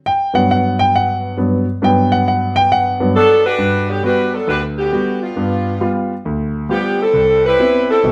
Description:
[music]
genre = jazz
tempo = 135 BPM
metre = 4/4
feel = swing 66% on 8ths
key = G major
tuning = A4 = 442 Hz
[part]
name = clear concert grand piano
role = accompaniment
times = 0.1-8.1 s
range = G1 to G5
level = -18 LUFS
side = equal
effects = none
[part]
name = mellow saxophone section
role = melody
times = 3.2-8.1 s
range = D3 to B4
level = -16 LUFS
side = equal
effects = none
[sound]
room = moderate large studio reverb, RT60 1.0 s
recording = close, detailed microphones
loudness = -15 LUFS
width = mono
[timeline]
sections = 0.0-3.6 A section; 3.6-8.1 B section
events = grand piano solo 0.0-3.6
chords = 0.0 Gmaj7; 5.4 G7; 7.1 Cmaj7

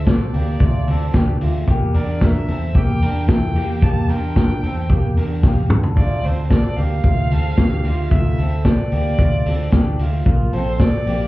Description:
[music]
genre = jangly indie pop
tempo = 112 BPM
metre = 4/4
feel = straight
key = D minor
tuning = A4 = 440 Hz
[part]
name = rich violin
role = melody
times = 0.0-11.3 s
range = C5 to A5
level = -28 LUFS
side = right 1 dB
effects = slapback echo, plate reverb
[part]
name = electric guitar through a small old amp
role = arpeggios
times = 0.0-11.3 s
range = A3 to Bb4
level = -26 LUFS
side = left 1 dB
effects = lush chorus, slapback echo, plate reverb
[part]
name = vintage muted fingered electric bass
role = bass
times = 0.0-11.3 s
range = Bb1 to E2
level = -19 LUFS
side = equal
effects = none
[part]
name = vintage drum kit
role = drums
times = 0.1-11.2 s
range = hi-hat, kick drum, snare drum, toms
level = -18 LUFS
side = equal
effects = none
[sound]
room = light reverb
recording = heard muffled through a wall, club reverb, EQ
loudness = -15 LUFS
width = side -18 dB against mid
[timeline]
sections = 0.0-11.3 A section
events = drum fill 5.4-6.0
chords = 0.0 Dm; 1.7 Edim; 5.7 Dm; 10.3 Bb

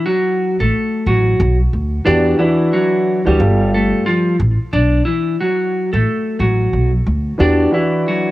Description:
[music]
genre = hip hop, boom-bap hip-hop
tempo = 90 BPM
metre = 4/4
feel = swing 61% on 16ths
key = B minor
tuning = A4 = 440 Hz
[part]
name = clean electric guitar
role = melody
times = 0.0-8.3 s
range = E3 to D5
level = -17 LUFS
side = equal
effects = high-pass filter, low-pass filter
[part]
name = upright bass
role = bass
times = 0.6-7.7 s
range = G1 to E2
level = -16 LUFS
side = equal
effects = none
[part]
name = dark grand piano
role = accompaniment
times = 2.0-8.3 s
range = E3 to A4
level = -16 LUFS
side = equal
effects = high-pass filter, low-pass filter, cassette tape
[sound]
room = little or no reverb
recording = home recording on cassette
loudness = -13 LUFS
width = side -16 dB against mid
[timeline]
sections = 0.0-4.7 A section; 4.7-8.3 B section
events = break 0.0-2.1, 4.7-7.4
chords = 0.0 Bm7; 2.1 Em9; 3.4 Gsus2; 4.7 Bm7; 7.4 Em9

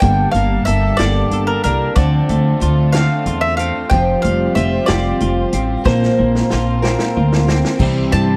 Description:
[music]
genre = folk rock and heartland rock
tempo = 62 BPM (dotted quarters)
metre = 6/8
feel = straight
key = G dorian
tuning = A4 = 442 Hz
[part]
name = mandolin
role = melody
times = 0.0-8.4 s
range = Bb4 to A5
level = -23 LUFS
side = equal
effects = none
[part]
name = picked old ladder-braced acoustic guitar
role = accompaniment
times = 0.0-8.4 s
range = F2 to Bb4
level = -24 LUFS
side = equal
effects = none
[part]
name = muted chamber string section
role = sustained chords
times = 0.0-8.4 s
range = Bb3 to A5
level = -31 LUFS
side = equal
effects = none
[part]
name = twelve-string electric guitar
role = riff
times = 0.0-8.4 s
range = G2 to A4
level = -23 LUFS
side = equal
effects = none
[part]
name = upright bass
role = bass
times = 0.0-8.3 s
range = F1 to G2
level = -20 LUFS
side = equal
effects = none
[part]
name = vintage drum kit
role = drums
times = 0.0-8.3 s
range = crash cymbal, hi-hat, kick drum, snare drum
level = -23 LUFS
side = equal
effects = none
[sound]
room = little or no reverb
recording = dry, close 1970s-style studio recording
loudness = -16 LUFS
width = mono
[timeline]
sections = 0.0-7.8 A section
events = drum fill 5.9-7.8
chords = 0.0 Gmadd9; 2.0 Dm7; 3.9 Fsus2; 5.9 Bbsus2; 7.8 C

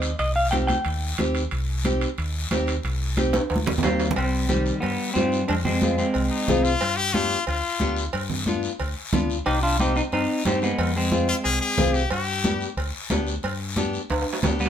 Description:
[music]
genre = latin, cumbia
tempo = 181 BPM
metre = 4/4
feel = straight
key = C minor, C harmonic minor from 4.2 s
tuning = A4 = 435 Hz
[part]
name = semi-hollow electric guitar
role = melody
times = 0.0-1.3, 3.7-6.6, 9.5-11.9, 14.6-14.7 s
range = Eb3 to G5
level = -24 LUFS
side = equal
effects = spring reverb
[part]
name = nylon-string guitar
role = accompaniment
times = 0.0-14.7 s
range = B3 to Ab4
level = -26 LUFS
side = equal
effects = none
[part]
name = deep dub fingered electric bass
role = bass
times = 0.0-14.7 s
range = C2 to G2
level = -27 LUFS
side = equal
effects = none
[part]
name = guiro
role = percussion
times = 0.0-14.7 s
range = none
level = -34 LUFS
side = left 4 dB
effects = none
[part]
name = timbales and cowbell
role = percussion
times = 0.0-14.7 s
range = none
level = -30 LUFS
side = right 3 dB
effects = none
[part]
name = congas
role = percussion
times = 0.5-14.6 s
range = none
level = -28 LUFS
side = right 1 dB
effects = none
[part]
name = brilliant trumpet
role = second line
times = 6.3-8.1, 11.3-12.7 s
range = Eb4 to Ab4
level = -25 LUFS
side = left 4 dB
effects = none
[sound]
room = moderate studio reverb, RT60 0.5 s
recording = band playing live in one room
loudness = -21 LUFS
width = side -9 dB against mid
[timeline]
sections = 0.0-4.2 A section; 4.2-14.7 B section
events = drum fill 3.3-4.2, 14.1-14.7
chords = 0.0 Cm; 5.5 Fm; 6.8 G7; 9.5 Cm; 10.8 Fm; 12.1 G

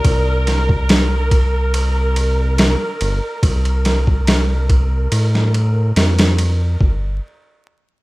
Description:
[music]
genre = trip hop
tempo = 71 BPM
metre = 4/4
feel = straight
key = unclear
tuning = A4 = 438 Hz
[part]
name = warm symphonic string section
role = sustained chords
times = 0.0-6.8 s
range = Bb4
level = -24 LUFS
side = right 1 dB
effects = low-pass filter
[part]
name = round analog bass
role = bass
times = 0.0-7.2 s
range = G1 to A2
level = -16 LUFS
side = equal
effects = none
[part]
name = boom bap sampler-style drum kit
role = drums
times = 0.0-7.0 s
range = kick drum, ride cymbal, snare drum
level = -17 LUFS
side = equal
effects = none
[sound]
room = little or no reverb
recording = rough home demo mix, vinyl crackle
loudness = -14 LUFS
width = side -21 dB against mid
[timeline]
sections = 0.0-6.8 A section; 6.8-8.0 B section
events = filter sweep on string section 0.0-6.8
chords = 0.0 C5; 6.8 N.C.

